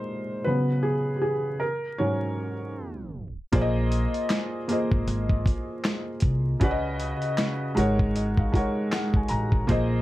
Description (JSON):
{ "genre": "lo-fi hip hop", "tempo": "78 BPM", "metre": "4/4", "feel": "swing 58% on 16ths", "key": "Bb minor", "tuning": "A4 = 441 Hz", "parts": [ { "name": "felt-muted upright piano", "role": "accompaniment", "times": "0.0-10.0 s", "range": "Ab2 to Bb5", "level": "-26 LUFS", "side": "equal", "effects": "cassette tape, low-pass filter" }, { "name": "upright bass", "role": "bass", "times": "3.5-10.0 s", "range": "Ab1 to Db2", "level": "-27 LUFS", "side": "equal", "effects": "none" }, { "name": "dusty soul sampler-style drum kit", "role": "drums", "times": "3.5-9.9 s", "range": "handclaps, hi-hat, kick drum, snare drum", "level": "-25 LUFS", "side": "equal", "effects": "vintage 12-bit sampler grit" } ], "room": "moderate small room ambience, RT60 0.5 s", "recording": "dark, warm production, vinyl crackle, tape stop", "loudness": "-23 LUFS", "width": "side -16 dB against mid", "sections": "0.0-3.5 A section; 3.5-10.0 B section", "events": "felt piano solo 0.0-3.5; tape stop 2.8-3.5", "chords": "0.5 Db7sus4; 1.6 Ab7sus4; 3.5 Bb9sus4; 6.6 Db9sus4; 7.8 Ab9sus4" }